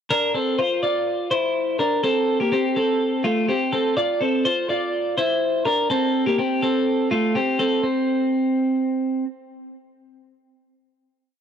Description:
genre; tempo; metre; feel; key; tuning
indie pop; 124 BPM; 4/4; straight; unclear; A4 = 440 Hz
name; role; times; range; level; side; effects
twelve-string electric guitar; solo; 0.1-9.2 s; A3 to D5; -19 LUFS; equal; cassette tape
room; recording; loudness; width
light reverb; home recording on cassette; -19 LUFS; side -8 dB against mid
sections
0.1-7.8 bridge; 7.8-11.4 final note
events
none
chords
0.1 Bb; 2.0 Am7; 4.0 Dm; 5.7 Csus2; 7.8 N.C.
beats
| 0.10 0.59 1.07 1.55 | 2.04 2.52 3.00 3.48 | 3.97 4.45 4.93 5.42 | 5.90 6.39 6.87 7.35 | 7.83 8.32 8.80

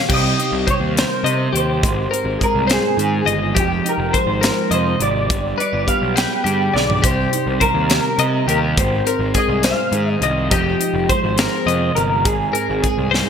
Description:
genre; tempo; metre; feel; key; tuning
math rock and midwest emo; 69 BPM (dotted quarters); 6/8; straight; Ab major; A4 = 438 Hz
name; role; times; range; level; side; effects
twelve-string electric guitar; accompaniment; 0.0-13.3 s; Ab2 to C5; -24 LUFS; right 7 dB; analog chorus
twelve-string electric guitar; arpeggios; 0.0-13.3 s; G4 to Eb5; -22 LUFS; left 7 dB; lush chorus, digital delay
electric guitar through a small old amp; melody; 0.1-13.3 s; G4 to G5; -21 LUFS; equal; ensemble chorus
fuzz picked electric bass; bass; 0.1-13.2 s; F1 to C3; -22 LUFS; equal; overdrive
crisp fusion drum kit; drums; 0.1-13.3 s; crash cymbal, hi-hat, kick drum, snare drum, toms; -21 LUFS; equal; none
room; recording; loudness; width
moderate lush hall reverb, RT60 1.9 s; bright 1980s-style digital production; -15 LUFS; side -7 dB against mid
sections
0.1-13.3 A section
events
drum fill 6.7, 13.1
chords
0.1 Cm7; 1.8 Ab6; 3.6 Fm9; 5.3 G7b9; 7.0 Cm7; 8.8 Ab6; 10.5 Fm9; 12.3 Ab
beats
| 0.10 0.96 | 1.83 2.70 | 3.56 4.43 | 5.30 6.17 | 7.04 7.91 | 8.78 9.64 | 10.51 11.38 | 12.26 13.13

